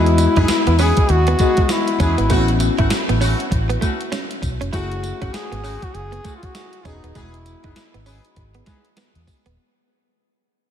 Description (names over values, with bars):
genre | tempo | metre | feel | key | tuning
R&B, new jack swing | 99 BPM | 4/4 | swing 60% on 16ths | E major | A4 = 440 Hz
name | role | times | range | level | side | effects
warm duduk | melody | 0.0-8.1 s | D#4 to G#4 | -22 LUFS | left 1 dB | diffuse ambient delay
mellow FM electric piano | accompaniment | 0.0-9.6 s | G#3 to D#5 | -24 LUFS | left 4 dB | chorus
clear horn section | stabs | 0.0-8.9 s | A3 to G#4 | -29 LUFS | left 1 dB | diffuse ambient delay
vintage muted fingered electric bass | bass | 0.0-9.6 s | D#1 to F#2 | -19 LUFS | equal | none
gated 80s digital drum machine | drums | 0.1-9.6 s | hi-hat, kick drum, snare drum, tambourine | -22 LUFS | equal | gated reverb, gated reverb snare
direct-recorded clean electric guitar | riff | 0.2-9.5 s | G#3 to E4 | -27 LUFS | right 6 dB | wide subtle chorus
room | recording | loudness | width
moderate huge ambient reverb, RT60 4.5 s | dreamy mix soaked in reverb | -15 LUFS | side -9 dB against mid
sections
0.0-9.6 A section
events
fade-out 0.0-9.6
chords
0.0 Emaj7; 2.3 A6; 4.7 F#m7; 6.9 Emaj7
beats
0.49 1.09 1.70 | 2.31 2.91 3.52 4.12 | 4.73 5.34 5.94 6.55 | 7.15 7.76 8.37 8.97